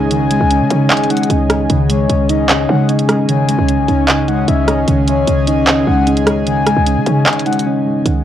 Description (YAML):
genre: hip hop, trap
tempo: 151 BPM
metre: 4/4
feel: half-time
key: unclear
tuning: A4 = 439 Hz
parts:
  - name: muted felt-like synth keys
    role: accompaniment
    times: 0.0-8.2 s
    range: D#3 to D#5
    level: -19 LUFS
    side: right 8 dB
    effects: chorus, low-pass filter, cassette tape
  - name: warm analog pad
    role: sustained chords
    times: 0.0-8.0 s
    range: C#4 to G#5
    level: -21 LUFS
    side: right 2 dB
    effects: chorus, cassette tape
  - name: mellow electric guitar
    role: arpeggios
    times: 0.0-8.1 s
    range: C#3 to D#4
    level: -17 LUFS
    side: left 5 dB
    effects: low-pass filter, cassette tape, tape echo
  - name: short 808-style bass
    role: bass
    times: 0.0-8.2 s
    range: B1 to C#3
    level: -18 LUFS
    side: right 1 dB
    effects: none
  - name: breathy flute-like synth lead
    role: second line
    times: 0.1-7.7 s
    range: C#5 to G#5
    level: -20 LUFS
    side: left 7 dB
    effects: chorus, cassette tape, tape echo
  - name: trap drum kit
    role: drums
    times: 0.1-8.1 s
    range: handclaps, hi-hat, rim click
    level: -16 LUFS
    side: right 1 dB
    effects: cassette tape
room: light reverb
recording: home recording on cassette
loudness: -11 LUFS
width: side -10 dB against mid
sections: 0.0-8.1 A section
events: break 7.7-8.1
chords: 0.0 C#sus2